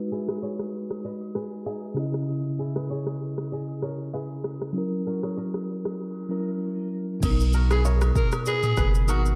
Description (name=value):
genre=afrobeats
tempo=97 BPM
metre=4/4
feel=swing 55% on 16ths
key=unclear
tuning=A4 = 440 Hz
part: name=bell-like tine electric piano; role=accompaniment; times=0.0-9.4 s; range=B2 to D#5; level=-32 LUFS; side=equal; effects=none
part: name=kora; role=riff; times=0.0-9.4 s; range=D#4 to D#5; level=-39 LUFS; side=equal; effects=diffuse ambient delay
part: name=afro-pop drum kit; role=drums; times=0.1-9.4 s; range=crash cymbal, kick drum, rim click, shaker, toms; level=-32 LUFS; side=equal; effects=none
part: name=agogo bells and woodblock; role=percussion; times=0.3-9.2 s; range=none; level=-43 LUFS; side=equal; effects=none
part: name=saturated sub bass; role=bass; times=7.2-9.3 s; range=F#1 to B1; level=-24 LUFS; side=equal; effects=none
part: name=raspy alto saxophone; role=melody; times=7.7-9.2 s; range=F#4 to A#4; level=-31 LUFS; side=equal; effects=diffuse ambient delay
room=light reverb, digital ambience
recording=low-pass filter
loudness=-27 LUFS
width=mono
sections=0.0-7.2 A section; 7.2-9.4 B section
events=filter sweep 0.0-7.2; silent gap 6.0-7.2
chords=0.0 G#m7; 2.0 C#madd9; 4.8 F#7; 7.2 Bmaj7